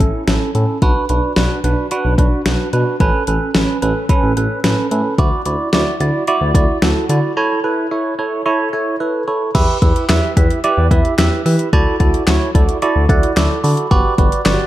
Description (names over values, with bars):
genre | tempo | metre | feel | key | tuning
synth-pop | 110 BPM | 4/4 | straight | D major | A4 = 439 Hz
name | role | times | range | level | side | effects
bell-like tine electric piano | accompaniment | 0.0-14.7 s | C#4 to B5 | -17 LUFS | right 2 dB | phaser
smooth synth bass | bass | 0.0-14.6 s | G1 to E3 | -18 LUFS | left 1 dB | none
deep house drum kit | drums | 0.0-14.6 s | crash cymbal, handclaps, hi-hat, kick drum, snare drum | -16 LUFS | left 1 dB | overdrive
room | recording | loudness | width
light reverb, digital ambience | dark, warm production | -13 LUFS | side -14 dB against mid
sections
0.8-9.5 A section; 9.5-14.7 B section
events
break 7.4-9.5; tine electric piano fill 12.8-13.9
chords
0.0 A; 0.8 Bm; 3.0 Aadd9; 5.2 Dadd9; 7.4 A; 9.5 Em; 11.7 Dadd9; 13.9 Gmaj7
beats
0.28 | 0.82 1.37 1.91 2.46 | 3.00 3.55 4.09 4.64 | 5.18 5.73 6.28 6.82 | 7.37 7.91 8.46 9.00 | 9.55 10.09 10.64 11.19 | 11.73 12.28 12.82 13.37 | 13.91 14.46